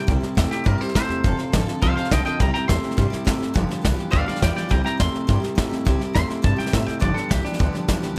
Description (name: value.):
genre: rockabilly.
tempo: 208 BPM.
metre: 4/4.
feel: straight.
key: C major.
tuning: A4 = 442 Hz.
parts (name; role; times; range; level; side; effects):
twangy electric guitar; melody; 0.0-8.0 s; D4 to C6; -30 LUFS; equal; digital delay.
picked steel-string acoustic guitar; accompaniment; 0.0-8.2 s; G2 to A4; -32 LUFS; equal; none.
electric guitar through a small old amp; riff; 0.0-8.2 s; F2 to A3; -30 LUFS; equal; none.
upright bass; bass; 0.0-8.1 s; F1 to A2; -27 LUFS; equal; none.
soft brush drum kit; drums; 0.1-8.1 s; hi-hat, kick drum, snare drum; -25 LUFS; equal; none.
room: studio reverb.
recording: none.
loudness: -22 LUFS.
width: mono.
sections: 0.1-8.2 A section.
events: none.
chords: 0.1 C; 1.2 F; 2.4 C; 3.6 G7; 4.7 C; 7.0 G7.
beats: | 0.09 0.38 0.66 0.95 | 1.24 1.53 1.82 2.11 | 2.40 2.69 2.98 3.27 | 3.56 3.85 4.13 4.42 | 4.71 5.00 5.29 5.58 | 5.87 6.16 6.45 6.73 | 7.02 7.31 7.60 7.89 | 8.18.